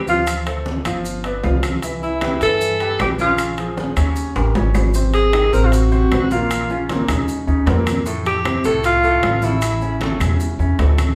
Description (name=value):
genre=Afro-Cuban jazz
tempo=154 BPM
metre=4/4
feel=straight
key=unclear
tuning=A4 = 440 Hz
part: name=clear grand piano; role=accompaniment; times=0.0-11.1 s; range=A2 to F5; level=-26 LUFS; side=equal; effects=none
part: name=upright bass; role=bass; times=0.0-11.2 s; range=G1 to G2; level=-22 LUFS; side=equal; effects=none
part: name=breathy alto saxophone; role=melody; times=0.1-10.0 s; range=E4 to Bb4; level=-20 LUFS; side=equal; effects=none
part: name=congas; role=percussion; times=0.1-11.2 s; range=none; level=-30 LUFS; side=equal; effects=none
part: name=maracas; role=percussion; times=0.1-11.2 s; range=none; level=-39 LUFS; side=equal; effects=none
part: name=claves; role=percussion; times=0.3-11.2 s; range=none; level=-34 LUFS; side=equal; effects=none
part: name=timbales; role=percussion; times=0.3-11.2 s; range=none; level=-28 LUFS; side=equal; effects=none
room=wet large studio reverb, RT60 0.7 s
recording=band playing live in one room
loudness=-18 LUFS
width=mono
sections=0.0-4.9 A section; 4.9-11.2 B section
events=drum fill 4.4-4.9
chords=0.3 Dm7; 1.0 G7; 1.8 Cmaj7; 3.4 Bbm7; 4.2 Eb7; 4.9 Abmaj7; 5.7 F#maj7#11; 6.5 Bbm; 7.3 Ebsus2; 8.1 Fadd9; 9.6 A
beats=| 0.27 0.66 1.05 1.44 | 1.83 2.22 2.61 3.00 | 3.39 3.78 4.17 4.56 | 4.95 5.34 5.73 6.12 | 6.50 6.89 7.28 7.67 | 8.06 8.45 8.84 9.23 | 9.62 10.01 10.39 10.78